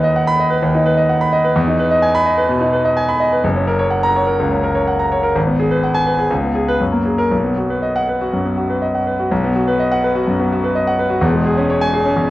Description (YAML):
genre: classical, virtuoso piano study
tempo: 126 BPM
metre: 4/4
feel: rubato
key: B major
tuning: A4 = 444 Hz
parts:
  - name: clear grand piano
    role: solo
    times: 0.0-12.3 s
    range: E1 to B5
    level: -14 LUFS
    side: equal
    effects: none
room: moderate recital hall reverb, RT60 1.4 s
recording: worn, warbling old tape, cassette tape, warbly pitch drift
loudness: -14 LUFS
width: side -16 dB against mid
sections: 0.0-9.3 A section; 9.3-12.3 A section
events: none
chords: 0.0 B/D#; 1.6 Emaj7; 3.4 F#; 5.4 G#m7; 6.3 C#5; 6.8 F#add9; 7.3 B; 11.2 C#m/E